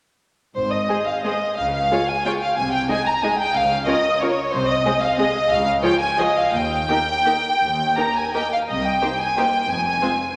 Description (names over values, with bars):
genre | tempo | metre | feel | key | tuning
classical, orchestral ballroom waltz | 160-199 BPM | 3/4 | rubato | Ab major | A4 = 440 Hz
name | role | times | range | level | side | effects
rich studio violin section | melody | 0.6-10.4 s | C5 to Bb5 | -22 LUFS | equal | none
clear studio double bass section | bass | 0.6-10.0 s | F1 to Eb2 | -34 LUFS | equal | none
rich studio cello section | bass | 0.6-10.0 s | C2 to Db3 | -34 LUFS | equal | none
rich studio violin section | second line | 0.9-10.1 s | F4 to Eb5 | -31 LUFS | equal | none
rich studio viola section | accompaniment | 0.9-10.1 s | F3 to Ab4 | -29 LUFS | equal | none
room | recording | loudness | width
wet scoring stage reverb, RT60 2.0 s | none | -20 LUFS | mono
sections
0.5-10.4 A section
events
none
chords
0.5 Ab; 1.6 Db; 2.6 Ab/C; 3.5 Bbm/Db (rootless); 4.5 Ab/C; 5.5 Db; 6.5 Eb; 8.7 Cm7; 9.7 Fm